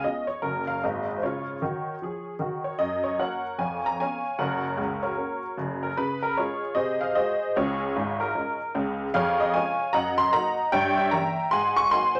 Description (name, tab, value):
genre	jazz, stride piano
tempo	151 BPM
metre	4/4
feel	swing 63% on 8ths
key	F# major, Db major from 9.1 s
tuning	A4 = 437 Hz
part	honky-tonk upright piano	solo	0.0-12.2 s	Gb1 to Db6	-26 LUFS	equal	none
room	wet studio reverb, RT60 0.6 s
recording	none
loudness	-27 LUFS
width	mono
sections	0.0-2.8 A section; 2.8-12.2 B section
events	none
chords	0.4 Gb; 0.8 Ab9; 1.2 Db; 2.8 F#; 3.6 C#7/E#; 4.4 F#; 6.0 C#; 6.8 G#7/B#; 7.6 C#; 9.1 Db/F; 9.9 Ebm/Gb; 10.7 Gdim7; 11.5 Absus2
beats	0.03 0.42 0.82 | 1.22 1.61 2.01 2.41 | 2.80 3.20 3.60 3.99 | 4.39 4.78 5.18 5.58 | 5.97 6.37 6.76 7.16 | 7.56 7.95 8.35 8.74 | 9.14 9.54 9.93 10.33 | 10.73 11.12 11.52 11.91